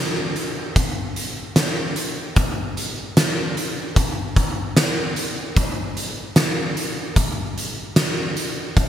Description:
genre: dream pop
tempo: 75 BPM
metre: 4/4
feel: straight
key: none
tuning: none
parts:
  - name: oversized low-tuned drum kit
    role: drums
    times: 0.4-8.9 s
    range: hi-hat, kick drum, snare drum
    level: -20 LUFS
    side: equal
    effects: gated reverb
room: light reverb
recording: bright 1980s-style digital production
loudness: -20 LUFS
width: side -10 dB against mid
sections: 0.0-8.9 A section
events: none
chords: none

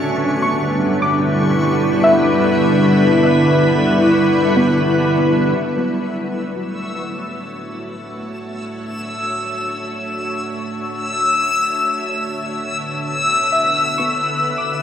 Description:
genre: ambient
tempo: free time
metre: none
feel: none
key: D major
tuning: A4 = 440 Hz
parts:
  - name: soft additive organ-like pad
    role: sustained chords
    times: 0.0-14.8 s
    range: D3 to E5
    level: -17 LUFS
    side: equal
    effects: ensemble chorus, built-in reverb
  - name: backwards swelling texture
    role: texture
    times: 0.0-14.8 s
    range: C#6 to E6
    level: -22 LUFS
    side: left 2 dB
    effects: built-in reverb
  - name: soft round pluck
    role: arpeggios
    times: 0.4-14.8 s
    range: F#3 to D6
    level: -22 LUFS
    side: left 1 dB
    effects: chorus, diffuse ambient delay
room: wet huge ambient reverb, RT60 8.3 s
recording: studio reverb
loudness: -15 LUFS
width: side -9 dB against mid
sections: 0.0-5.6 A section; 5.6-14.8 B section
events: fade-out on synth texture 0.0-5.6; fade-in on ambient pad 5.6-14.8; fade-in on synth pluck 5.6-14.8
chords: 0.0 Em/D; 5.6 Dmaj9; 12.0 E5/D

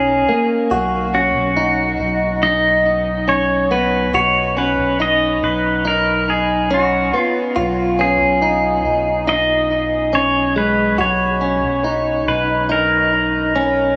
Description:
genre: dream pop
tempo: 70 BPM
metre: 4/4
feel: straight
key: B major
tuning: A4 = 440 Hz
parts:
  - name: pedal steel guitar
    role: melody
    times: 0.0-14.0 s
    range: F#4 to D#5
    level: -20 LUFS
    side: equal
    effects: digital delay
  - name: direct-recorded clean electric guitar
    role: arpeggios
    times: 0.0-14.0 s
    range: G#3 to F#4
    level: -21 LUFS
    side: equal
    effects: lush chorus, digital delay
  - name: round analog bass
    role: bass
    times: 0.0-13.9 s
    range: B1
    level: -27 LUFS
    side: equal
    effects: none
room: wet huge ambient reverb, RT60 7.3 s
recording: small room ambience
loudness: -17 LUFS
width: mono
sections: 0.0-14.0 A section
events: none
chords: 0.0 F#/B (rootless); 0.7 B; 7.6 C#add9/B; 11.0 F#/B

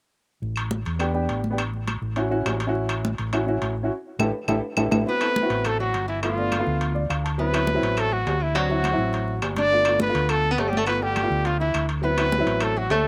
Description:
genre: Afro-Cuban jazz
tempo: 207 BPM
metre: 4/4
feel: straight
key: D mixolydian from 5.1 s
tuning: A4 = 440 Hz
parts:
  - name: fingered electric bass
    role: bass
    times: 0.4-13.1 s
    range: G1 to E2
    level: -30 LUFS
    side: equal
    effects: none
  - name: congas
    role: percussion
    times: 0.4-13.0 s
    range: none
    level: -32 LUFS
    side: equal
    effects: none
  - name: claves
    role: percussion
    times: 0.6-12.8 s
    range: none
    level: -35 LUFS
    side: equal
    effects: none
  - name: timbales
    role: percussion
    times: 0.6-13.0 s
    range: none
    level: -34 LUFS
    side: equal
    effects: none
  - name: warm baby grand piano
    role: accompaniment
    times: 1.0-12.8 s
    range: F#3 to A5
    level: -29 LUFS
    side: equal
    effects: slapback echo
  - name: clear trumpet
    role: melody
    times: 5.1-13.1 s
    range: E4 to D5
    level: -26 LUFS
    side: equal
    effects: none
  - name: lap resonator guitar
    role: second line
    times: 5.1-13.1 s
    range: E3 to D4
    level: -32 LUFS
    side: equal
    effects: none
room: little or no reverb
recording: recorded outdoors, with no room sound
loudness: -24 LUFS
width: mono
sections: 0.4-5.1 A section; 5.1-13.1 B section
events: drum fill 3.9-5.1; band accent 3.9-5.1; grand piano fill 6.8-7.4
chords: 0.4 A7sus4; 1.6 A6; 3.9 A5; 5.1 Am13; 6.2 G9; 7.4 D9; 9.7 G9; 12.0 D9

